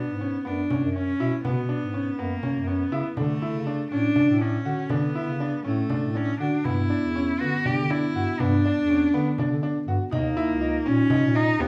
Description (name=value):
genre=contemporary instrumental, chamber music in an uneven meter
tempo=242 BPM (eighths)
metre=7/8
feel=straight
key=unclear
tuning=A4 = 440 Hz
part: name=clear cello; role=melody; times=0.0-11.7 s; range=A3 to G4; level=-29 LUFS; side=equal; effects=none
part: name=bright grand piano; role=arpeggios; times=0.0-11.7 s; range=B3 to G4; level=-31 LUFS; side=equal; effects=none
part: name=mellow bass clarinet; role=bass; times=0.1-11.7 s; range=C#2 to D3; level=-31 LUFS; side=equal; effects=none
part: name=frame drum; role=percussion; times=0.7-11.3 s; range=none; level=-33 LUFS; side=equal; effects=none
part: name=vibraphone with medium mallets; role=second line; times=6.7-11.7 s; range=B3 to D#4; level=-30 LUFS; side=equal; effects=none
room=moderate recital hall reverb, RT60 1.3 s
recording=small room ambience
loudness=-25 LUFS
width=mono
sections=0.0-11.7 A section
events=none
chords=0.0 Bsus2; 3.2 D5; 6.7 G; 10.1 D#5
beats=0.21 0.46 0.70 0.95 1.20 | 1.45 1.69 1.94 2.18 2.43 2.68 2.93 | 3.17 3.42 3.67 3.92 4.16 4.41 4.66 | 4.90 5.15 5.40 5.65 5.90 6.15 6.40 | 6.65 6.90 7.15 7.40 7.65 7.90 8.15 | 8.40 8.65 8.89 9.14 9.39 9.63 9.88 | 10.12 10.37 10.61 10.86 11.10 11.35 11.59